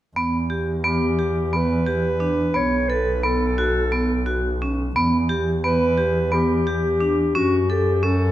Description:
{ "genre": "contemporary instrumental, chamber music in an uneven meter", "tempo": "176 BPM (eighths)", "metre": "7/8", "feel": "straight", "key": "E dorian", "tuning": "A4 = 442 Hz", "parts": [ { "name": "vibraphone with hard mallets", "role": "arpeggios", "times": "0.2-8.2 s", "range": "B3 to A4", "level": "-22 LUFS", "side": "right 2 dB", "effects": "none" }, { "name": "rich double bass", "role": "bass", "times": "0.2-8.3 s", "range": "B1 to F#2", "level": "-24 LUFS", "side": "equal", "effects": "none" }, { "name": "mellow clarinet", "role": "melody", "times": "0.9-8.3 s", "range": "F#4 to C#5", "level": "-23 LUFS", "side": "left 2 dB", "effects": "none" } ], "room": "moderate recital hall reverb, RT60 1.4 s", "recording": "none", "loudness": "-18 LUFS", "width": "side -13 dB against mid", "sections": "0.2-8.3 A section", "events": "none", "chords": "0.2 Em; 2.6 B5; 4.9 Em; 7.3 F#m" }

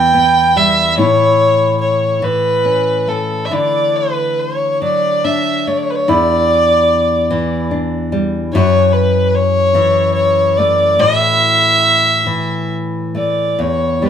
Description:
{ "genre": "celtic folk", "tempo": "45-49 BPM (dotted quarters)", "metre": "6/8", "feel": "rubato", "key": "unclear", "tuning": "A4 = 440 Hz", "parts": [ { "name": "dark fiddle", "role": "melody", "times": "0.0-14.1 s", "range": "A4 to G5", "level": "-13 LUFS", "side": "equal", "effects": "none" }, { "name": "nylon-string guitar", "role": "accompaniment", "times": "0.0-14.1 s", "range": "E2 to G4", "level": "-17 LUFS", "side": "left 2 dB", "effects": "none" } ], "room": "moderate large studio reverb, RT60 1.2 s", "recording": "band playing live in one room", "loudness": "-11 LUFS", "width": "side -8 dB against mid", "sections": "0.0-13.6 A section", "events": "none", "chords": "0.0 Em; 1.0 A; 3.5 Dadd9; 6.1 Em7; 8.5 F#m7; 11.0 A5" }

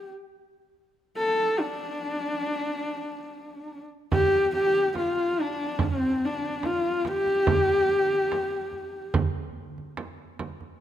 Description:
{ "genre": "mongolian traditional, Mongolian folk", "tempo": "72 BPM", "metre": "4/4", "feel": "straight", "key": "unclear", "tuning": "A4 = 440 Hz", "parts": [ { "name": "dark horsehead fiddle", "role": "melody", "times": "0.0-9.2 s", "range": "C4 to A4", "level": "-24 LUFS", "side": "left 1 dB", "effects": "none" }, { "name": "frame drum", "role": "percussion", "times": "4.1-10.7 s", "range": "none", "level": "-29 LUFS", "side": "right 4 dB", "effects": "none" } ], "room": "light reverb", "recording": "close, detailed microphones", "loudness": "-23 LUFS", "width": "side -11 dB against mid", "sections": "0.0-4.1 A section; 4.1-10.8 B section", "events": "none", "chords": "none" }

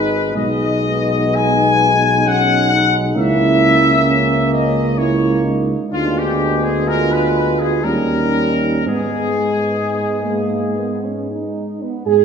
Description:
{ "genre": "classical, hymn-like piece for brass band", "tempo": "55-67 BPM", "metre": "3/4", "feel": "rubato", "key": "G# minor", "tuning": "A4 = 439 Hz", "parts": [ { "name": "clear trumpet section", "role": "melody", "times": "0.0-12.2 s", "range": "F4 to G#5", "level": "-18 LUFS", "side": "left 5 dB", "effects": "none" }, { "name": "mellow French horn section", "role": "second line", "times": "0.0-12.2 s", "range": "G#3 to G#4", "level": "-21 LUFS", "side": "right 7 dB", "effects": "none" }, { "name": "clear trombone", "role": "accompaniment", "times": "0.0-11.7 s", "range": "G3 to A#3", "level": "-22 LUFS", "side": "right 2 dB", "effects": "none" }, { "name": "warm euphonium", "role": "accompaniment", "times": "0.0-12.2 s", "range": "B3 to D#4", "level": "-24 LUFS", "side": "right 1 dB", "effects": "none" }, { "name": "mellow tuba", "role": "bass", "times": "0.0-12.2 s", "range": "G#1 to G#2", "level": "-20 LUFS", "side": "equal", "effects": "none" } ], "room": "wet recital hall reverb, RT60 1.7 s", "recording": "recorded in a church or concert hall", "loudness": "-14 LUFS", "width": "side -6 dB against mid", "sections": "0.0-12.1 A section", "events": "none", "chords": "0.4 G#m/B; 3.2 A#dim/C#; 5.9 Ddim7; 7.8 D#7; 8.9 G#m" }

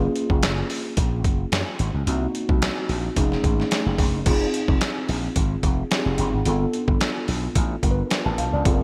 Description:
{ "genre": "polished 1980s jazz-funk pop", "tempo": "109 BPM", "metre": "4/4", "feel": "swing 54% on 16ths", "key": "unclear", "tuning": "A4 = 440 Hz", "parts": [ { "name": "mellow tine electric piano", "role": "accompaniment", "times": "0.0-8.8 s", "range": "A3 to A5", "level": "-28 LUFS", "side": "equal", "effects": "lush chorus" }, { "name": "slap bass with an envelope filter", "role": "bass", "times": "0.0-8.8 s", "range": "F1 to Gb2", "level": "-27 LUFS", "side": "equal", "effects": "none" }, { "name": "boom bap sampler-style drum kit", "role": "drums", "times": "0.2-8.8 s", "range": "crash cymbal, hi-hat, kick drum, snare drum", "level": "-26 LUFS", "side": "equal", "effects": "overdrive, gated reverb" } ], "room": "light reverb", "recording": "bright 1980s-style digital production", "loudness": "-23 LUFS", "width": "mono", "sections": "0.0-4.3 A section; 4.3-8.8 B section", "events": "none", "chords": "0.0 Gbmaj9; 2.1 Cm7b5; 3.2 F7alt; 4.3 Fm7; 6.5 G9" }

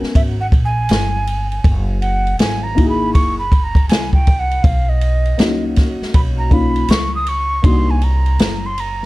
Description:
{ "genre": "hip hop, jazz-hop", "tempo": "80 BPM", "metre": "4/4", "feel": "swing 65% on 16ths", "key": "unclear", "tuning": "A4 = 442 Hz", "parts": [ { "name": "dark upright piano", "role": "accompaniment", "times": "0.0-7.9 s", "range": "Bb3 to Bb4", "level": "-19 LUFS", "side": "left 2 dB", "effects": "none" }, { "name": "upright bass", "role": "bass", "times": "0.0-9.1 s", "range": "Gb1 to C#2", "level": "-19 LUFS", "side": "equal", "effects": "none" }, { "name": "open jazz drum kit", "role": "drums", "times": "0.0-9.1 s", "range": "hi-hat, kick drum, ride cymbal, snare drum", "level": "-15 LUFS", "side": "equal", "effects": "none" }, { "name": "mellow hollow jazz flute", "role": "melody", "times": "0.2-9.1 s", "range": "D#5 to D#6", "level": "-22 LUFS", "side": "right 2 dB", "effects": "none" } ], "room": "light reverb", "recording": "dark, warm production", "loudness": "-13 LUFS", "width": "side -19 dB against mid", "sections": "0.0-9.1 A section", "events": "flute solo 0.0-9.1", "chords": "0.0 E6 (rootless); 1.6 Gb13; 4.6 Bmaj9; 7.6 Cm7b5" }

